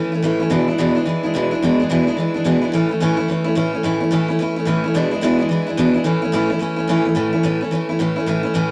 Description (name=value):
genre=rock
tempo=216 BPM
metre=4/4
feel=swing 63% on 8ths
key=A major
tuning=A4 = 440 Hz
part: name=picked steel-string acoustic guitar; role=solo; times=0.0-8.7 s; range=E2 to E4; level=-19 LUFS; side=equal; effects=none
room=moderate studio ambience, RT60 0.5 s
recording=none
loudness=-19 LUFS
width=mono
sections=0.0-7.2 A section; 7.2-8.7 B section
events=none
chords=0.0 A; 0.5 E7; 2.7 A; 4.9 E7; 6.1 A